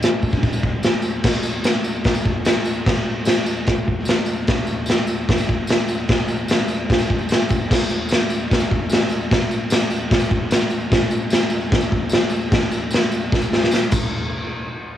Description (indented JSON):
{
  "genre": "rock",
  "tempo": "149 BPM",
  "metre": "4/4",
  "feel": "straight",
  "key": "none",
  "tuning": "none",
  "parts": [
    { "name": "raw garage drum kit", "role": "drums", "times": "0.0-14.0 s", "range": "crash cymbal, kick drum, snare drum", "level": "-17 LUFS", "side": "equal", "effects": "cassette tape" },
    { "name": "tambourine", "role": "percussion", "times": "0.0-14.3 s", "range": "none", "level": "-34 LUFS", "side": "left 1 dB", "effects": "none" }
  ],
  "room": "little or no reverb",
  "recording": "home recording on cassette, small room ambience",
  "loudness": "-17 LUFS",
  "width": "side -11 dB against mid",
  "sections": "0.0-1.2 A section; 1.2-7.7 B section; 7.7-14.1 B section",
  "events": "drum fill 13.3-14.1",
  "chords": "none"
}